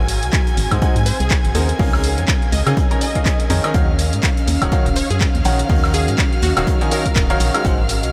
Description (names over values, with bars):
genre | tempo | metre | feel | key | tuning
piano house | 123 BPM | 4/4 | swing 58% on 16ths | Eb dorian | A4 = 440 Hz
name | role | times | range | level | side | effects
rich chamber violin section | sustained chords | 0.0-8.1 s | F5 to Ab6 | -31 LUFS | equal | sidechain pumping
organ-like FM bass | bass | 0.0-8.1 s | Eb1 to Db3 | -22 LUFS | equal | sidechain pumping
deep dark ambient pad | texture | 0.0-8.1 s | C4 to Gb5 | -30 LUFS | equal | chorus, built-in reverb, sidechain pumping
modern studio drum kit | drums | 0.1-8.0 s | hi-hat, snare drum | -38 LUFS | equal | none
punchy analog drum machine | drums | 0.1-8.1 s | handclaps, hi-hat, shaker, woodblock | -26 LUFS | equal | none
electronic kick drum | drums | 0.3-7.8 s | none | -21 LUFS | equal | none
bright baby grand piano | riff | 0.7-7.8 s | Db3 to Bb5 | -26 LUFS | equal | sidechain pumping, delay
plucky unison lead | melody | 1.1-7.4 s | Gb4 to Eb5 | -31 LUFS | equal | phaser, delay
room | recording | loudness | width
moderate huge ambient reverb, RT60 8.6 s | dreamy mix soaked in reverb | -17 LUFS | mono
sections
0.0-8.1 A section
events
none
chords
0.0 Ab7; 1.8 Db69; 3.7 Ebm9